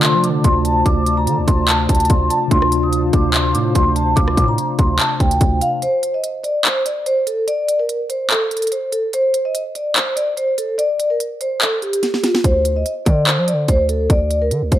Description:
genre	hip hop, trap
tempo	145 BPM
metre	4/4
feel	half-time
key	D minor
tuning	A4 = 445 Hz
part	vibraphone with soft mallets	melody	0.0-14.8 s	F4 to Eb6	-18 LUFS	equal	digital delay
part	mellow tine electric piano	accompaniment	0.0-5.8 s	C3 to F4	-21 LUFS	equal	medium stereo tremolo
part	dark analog pad	sustained chords	0.0-5.8 s	F4 to A5	-28 LUFS	left 1 dB	chorus
part	distorted 808-style bass	bass	0.0-5.6, 12.4-14.8 s	D2 to F3	-19 LUFS	equal	distortion
part	trap drum kit	drums	0.0-14.8 s	handclaps, hi-hat, kick drum, rim click, snare drum	-18 LUFS	equal	none
room	light reverb, digital ambience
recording	none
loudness	-15 LUFS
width	side -12 dB against mid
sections	0.0-5.8 A section; 5.8-14.8 B section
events	break 5.8-12.4; drum fill 12.0-12.4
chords	0.0 Dm7; 5.8 N.C.

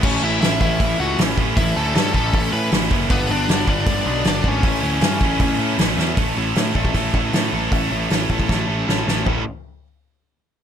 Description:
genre	punk rock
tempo	156 BPM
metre	4/4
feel	straight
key	A mixolydian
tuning	A4 = 442 Hz
part	overdriven semi-hollow guitar	melody	0.0-5.8 s	B3 to B5	-24 LUFS	left 3 dB	ping-pong delay
part	distorted electric guitar	riff	0.0-9.4 s	G2 to A4	-22 LUFS	right 1 dB	overdrive
part	fuzz picked electric bass	bass	0.0-9.4 s	F#1 to A2	-23 LUFS	equal	overdrive
part	loose indie drum kit	drums	0.0-9.4 s	crash cymbal, hi-hat, kick drum, snare drum, toms	-21 LUFS	equal	none
room	little or no reverb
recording	none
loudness	-16 LUFS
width	side -8 dB against mid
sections	0.0-6.2 A section; 6.2-9.3 B section; 9.3-10.6 C section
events	drum fill 6.0, 8.5-9.3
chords	0.0 A; 3.1 G; 4.6 A; 9.3 A5

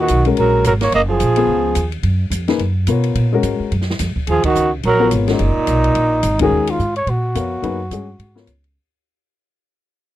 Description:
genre	modal jazz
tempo	215 BPM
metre	4/4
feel	swing 59% on 8ths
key	Eb minor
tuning	A4 = 440 Hz
part	breathy trumpet	melody	0.0-1.9, 4.3-8.5 s	Eb4 to Eb5	-18 LUFS	equal	none
part	growling tenor saxophone	second line	0.0-1.9, 4.3-6.4 s	Bb2 to Bb3	-20 LUFS	right 7 dB	none
part	warm upright piano	accompaniment	0.0-8.5 s	Eb3 to F5	-19 LUFS	left 7 dB	none
part	upright bass	bass	0.0-8.7 s	Gb1 to Cb3	-19 LUFS	right 1 dB	none
part	open jazz drum kit	drums	0.1-8.7 s	hi-hat, kick drum, ride cymbal, snare drum	-27 LUFS	equal	none
room	little or no reverb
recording	dry, close 1970s-style studio recording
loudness	-14 LUFS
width	side -14 dB against mid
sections	0.0-6.5 A section; 6.5-8.8 B section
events	band accent 4.4, 6.4; fade-out 6.5-8.8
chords	0.0 Ebm11

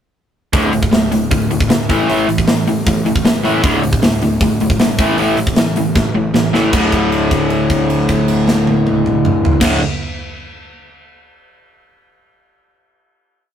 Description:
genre	punk rock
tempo	155 BPM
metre	4/4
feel	straight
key	unclear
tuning	A4 = 436 Hz
part	overdriven semi-hollow guitar	riff	0.5-9.8 s	D2 to A3	-14 LUFS	equal	none
part	fuzz picked electric bass	bass	0.5-9.8 s	D1 to A1	-23 LUFS	equal	overdrive
part	tight metal drum kit	drums	0.5-9.7 s	crash cymbal, hi-hat, kick drum, snare drum, toms	-16 LUFS	equal	none
room	light reverb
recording	rough rehearsal-room recording, tube saturation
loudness	-12 LUFS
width	side -9 dB against mid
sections	0.5-6.7 verse; 6.7-9.8 final chord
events	drum fill 6.0-6.7; held note 6.7-9.6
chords	0.5 D5; 1.9 A5; 3.6 D5; 5.0 A5; 6.7 D5

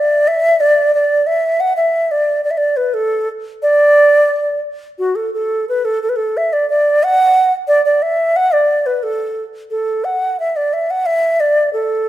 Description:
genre	chinese traditional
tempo	89 BPM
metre	2/4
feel	straight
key	D gong mode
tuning	A4 = 439 Hz
part	bright xiao	solo	0.0-12.1 s	F#4 to F#5	-12 LUFS	right 1 dB	none
room	moderate recital hall reverb, RT60 1.5 s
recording	none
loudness	-12 LUFS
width	side -13 dB against mid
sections	0.0-5.0 A section; 5.0-12.1 B section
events	none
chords	none

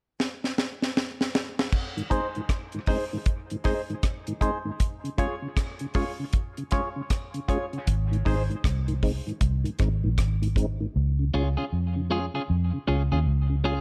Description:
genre	dub reggae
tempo	78 BPM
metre	4/4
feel	swing 62% on 16ths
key	Ab major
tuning	A4 = 441 Hz
part	deep reggae drum kit	drums	0.2-10.8 s	crash cymbal, hi-hat, kick drum, rim click, snare drum	-29 LUFS	equal	none
part	mellow tonewheel organ	accompaniment	2.0-13.7 s	Ab2 to F4	-35 LUFS	equal	chorus vibrato, slow rotary speaker
part	percussive organ stab	stabs	2.1-8.4 s	Eb4 to Db5	-35 LUFS	equal	chorus, phaser, dub echo
part	vintage muted fingered electric bass	bass	7.9-13.8 s	Ab1 to F2	-27 LUFS	equal	none
part	clean electric guitar	accompaniment	11.3-13.8 s	Db4 to Ab4	-33 LUFS	equal	dub echo
room	small room reverb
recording	none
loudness	-27 LUFS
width	mono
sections	0.0-1.7 A section; 1.7-13.8 B section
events	drum fill 0.2-1.7; part muted 11.0-13.8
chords	0.0 N.C.; 1.7 Ab; 4.8 Db; 7.9 Ab; 11.0 Db

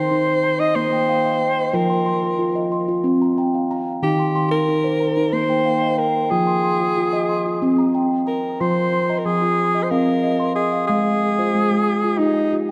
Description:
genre	world meditative, meditative tuned percussion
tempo	184 BPM (eighths)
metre	7/8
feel	straight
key	unclear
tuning	A4 = 440 Hz
part	clear alto saxophone	melody	0.0-12.6 s	Eb4 to Eb5	-24 LUFS	equal	none
part	steel tongue drum	arpeggios	0.0-12.7 s	Eb3 to C6	-21 LUFS	equal	diffuse ambient delay
room	wet church reverb, RT60 3.2 s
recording	none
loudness	-19 LUFS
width	mono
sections	0.0-8.6 A section; 8.6-12.7 B section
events	none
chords	0.0 Eb; 1.7 F5; 4.0 Eb; 6.3 Fm; 8.6 F5; 10.9 Ab

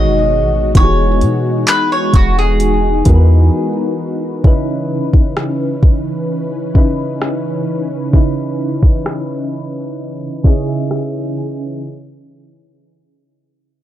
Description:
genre	contemporary R&B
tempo	65 BPM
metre	4/4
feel	straight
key	C# minor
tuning	A4 = 440 Hz
part	mandolin	melody	0.0-3.7 s	F#4 to D#5	-17 LUFS	left 1 dB	tape echo
part	soft electric-piano-like synth keys	accompaniment	0.0-11.8 s	C#3 to G#5	-19 LUFS	equal	chorus, phaser
part	warm analog pad	sustained chords	0.0-11.8 s	B2 to B4	-22 LUFS	left 1 dB	chorus
part	soft 808-style bass	bass	0.0-3.5 s	E1 to B2	-13 LUFS	equal	none
part	smooth R&B drum kit	drums	0.8-11.1 s	handclaps, hi-hat, kick drum, rim click	-11 LUFS	equal	none
room	little or no reverb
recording	dark, warm production, low-pass filter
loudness	-12 LUFS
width	side -12 dB against mid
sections	0.0-4.4 A section; 4.4-11.8 B section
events	break 3.5-4.4; filter sweep 4.4-11.8; synth keys fill 10.0-11.8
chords	0.0 G#m7; 0.8 Emaj9; 4.4 C#m7

